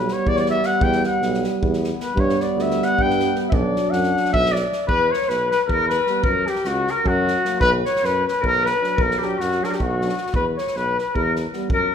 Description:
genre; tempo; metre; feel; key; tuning
balkan folk, Balkan brass band; 309 BPM (eighths); 7/8; straight; unclear; A4 = 435 Hz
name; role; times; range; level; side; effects
mellow trumpet; melody; 0.0-11.9 s; F#4 to G5; -22 LUFS; left 1 dB; none
mellow euphonium; accompaniment; 0.0-11.7 s; F#3 to G3; -27 LUFS; right 8 dB; none
warm French horn; accompaniment; 0.0-11.7 s; A#3 to D4; -29 LUFS; left 7 dB; none
warm tuba; bass; 0.0-11.9 s; B1 to G2; -25 LUFS; equal; none
unplugged drum kit; percussion; 0.1-11.8 s; kick drum, snare drum; -27 LUFS; right 1 dB; none
bright clarinet; second line; 4.9-11.9 s; F#4 to C#5; -24 LUFS; left 4 dB; none
room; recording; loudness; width
moderate scoring stage reverb, RT60 2.0 s; minimal, uncompressed stereo recording; -18 LUFS; side -8 dB against mid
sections
0.0-4.9 A section; 4.9-11.9 B section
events
trumpet solo 0.0-4.9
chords
0.0 Em; 2.2 G; 3.5 Bm; 4.9 Em; 6.2 F#; 7.6 Bm; 10.3 Em

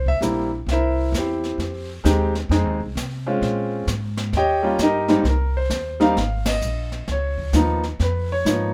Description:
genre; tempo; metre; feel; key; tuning
jazz piano trio; 131 BPM; 4/4; swing 65% on 8ths; unclear; A4 = 441 Hz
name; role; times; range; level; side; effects
clear concert grand piano; melody; 0.0-8.7 s; Ab2 to G5; -23 LUFS; equal; none
upright bass; bass; 0.0-8.7 s; Ab1 to C3; -26 LUFS; equal; none
jazz brush drum kit; drums; 0.1-8.7 s; brushed snare drum, hi-hat, kick drum, ride cymbal, snare drum; -32 LUFS; equal; none
room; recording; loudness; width
light reverb; none; -22 LUFS; mono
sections
0.0-5.3 A section; 5.3-8.7 B section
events
band accent 6.4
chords
0.0 C7; 1.6 Fm7; 3.4 Bbm7; 4.3 Eb7; 5.3 Abadd9; 7.1 Db13

